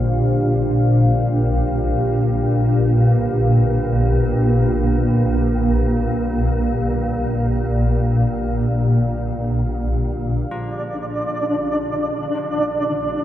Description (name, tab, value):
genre	dark ambient drone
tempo	free time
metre	none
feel	none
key	unclear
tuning	A4 = 445 Hz
part	deep dark ambient pad	sustained chords	0.0-13.2 s	D4 to F5	-25 LUFS	equal	chorus, built-in reverb
part	swarming drone	drone	0.0-13.2 s	Bb1 to Bb2	-18 LUFS	equal	built-in reverb
part	carillon bells	arpeggios	10.5-13.2 s	F4	-34 LUFS	equal	tape echo
part	flickering grainy texture	texture	10.7-13.2 s	D4 to D5	-20 LUFS	right 1 dB	built-in reverb
room	wet huge ambient reverb, RT60 8.2 s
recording	none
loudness	-16 LUFS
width	side -12 dB against mid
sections	0.0-10.5 A section; 10.5-13.2 B section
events	fade-out on ambient pad 0.0-10.5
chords	0.0 Dm; 10.5 Gm7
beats	free time